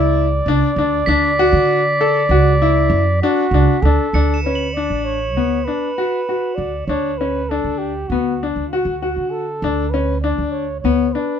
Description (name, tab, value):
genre	contemporary instrumental, chamber music in an uneven meter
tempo	196 BPM (eighths)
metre	9/8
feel	straight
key	D major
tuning	A4 = 436 Hz
part	breathy flugelhorn	melody	0.0-11.4 s	F#4 to D5	-21 LUFS	right 1 dB	none
part	clear grand piano	arpeggios	0.0-11.3 s	B3 to A4	-19 LUFS	left 4 dB	none
part	upright bass	bass	0.0-11.1 s	A1 to D3	-19 LUFS	right 2 dB	none
part	crotales	texture	1.1-6.9 s	B6 to F#7	-26 LUFS	equal	none
room	light reverb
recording	close, detailed microphones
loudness	-15 LUFS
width	side -8 dB against mid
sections	0.0-4.1 A section; 4.1-11.4 B section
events	none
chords	0.0 D; 4.1 D6; 9.6 Dmaj7(no3)